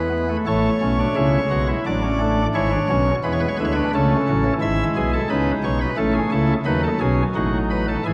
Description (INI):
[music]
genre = classical, baroque-style 4-part fugue for pipe organ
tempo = 87 BPM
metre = 3/4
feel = straight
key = A major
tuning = A4 = 440 Hz
[part]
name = pipe organ, cornet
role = solo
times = 0.0-8.1 s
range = G#1 to E5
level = -20 LUFS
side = equal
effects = none
[sound]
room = wet church reverb, RT60 3.2 s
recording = vinyl crackle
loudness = -20 LUFS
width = mono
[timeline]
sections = 0.5-8.1 A section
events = none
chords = 0.5 A; 1.9 D/A; 2.6 E7/G#; 3.9 A/C#; 4.6 E/G#; 6.0 A; 6.7 B7